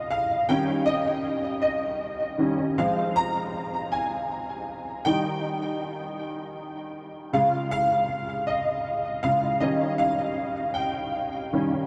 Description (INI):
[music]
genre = pop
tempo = 53 BPM (dotted quarters)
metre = 6/8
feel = straight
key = unclear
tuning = A4 = 436 Hz
[part]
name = clear concert grand piano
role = solo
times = 0.0-11.9 s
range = Db3 to Bb5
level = -26 LUFS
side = equal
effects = ensemble chorus, delay
[sound]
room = wet huge ambient reverb, RT60 8.9 s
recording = dreamy mix soaked in reverb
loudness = -26 LUFS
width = mono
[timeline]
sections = 0.0-11.9 A section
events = grand piano solo 0.0-11.9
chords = 0.5 Eb7; 2.8 Fm; 5.1 Eb; 7.3 Dbadd9; 9.6 Eb7